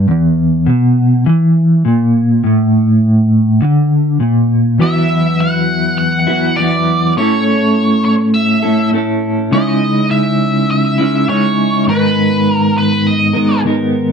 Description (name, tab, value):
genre	rock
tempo	102 BPM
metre	4/4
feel	straight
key	unclear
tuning	A4 = 440 Hz
part	clean electric guitar	riff	0.0-14.1 s	E2 to A#4	-11 LUFS	equal	tremolo, double-tracked left and right
part	octave-fuzz lead guitar	melody	4.8-13.6 s	B4 to F#5	-17 LUFS	right 1 dB	wah, distortion, slapback echo
room	little or no reverb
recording	dry, close 1970s-style studio recording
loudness	-10 LUFS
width	side -6 dB against mid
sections	0.0-4.8 A section; 4.8-14.1 B section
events	none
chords	0.0 E5; 4.8 Esus2; 7.2 A; 9.5 C#madd9; 11.9 G#madd9